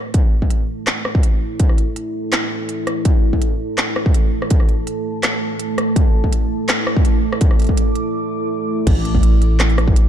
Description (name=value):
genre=half-time drum and bass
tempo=165 BPM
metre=4/4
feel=half-time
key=unclear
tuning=A4 = 440 Hz
part: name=deep dark ambient pad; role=sustained chords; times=0.0-10.1 s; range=A3 to D6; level=-22 LUFS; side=right 1 dB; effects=chorus, built-in reverb, vintage 12-bit sampler grit, sidechain pumping
part: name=electronic kick drum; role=drums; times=0.1-9.9 s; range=none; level=-15 LUFS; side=equal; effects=distortion
part: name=industrial drum kit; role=drums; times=0.1-10.0 s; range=crash cymbal, handclaps, hi-hat, rim click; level=-22 LUFS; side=equal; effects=high-pass filter on snare, high-pass filter on hats, high-pass filter on cymbals, high-pass filter on room
part: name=long sustained 808-style bass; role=bass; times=8.9-10.1 s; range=A1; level=-15 LUFS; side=equal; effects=tube saturation
room=light reverb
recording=dark, warm production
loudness=-15 LUFS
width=side -10 dB against mid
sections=0.0-8.9 A section; 8.9-10.1 B section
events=build-up 0.0-8.9; filter sweep on ambient pad 0.0-8.9; break 8.1-8.9; drop 8.9-10.1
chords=0.0 A5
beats=| 0.14 0.51 0.87 1.24 | 1.60 1.96 2.33 2.69 | 3.05 3.42 3.78 4.14 | 4.51 4.87 5.24 5.60 | 5.96 6.33 6.69 7.05 | 7.42 7.78 8.14 8.51 | 8.87 9.23 9.60 9.96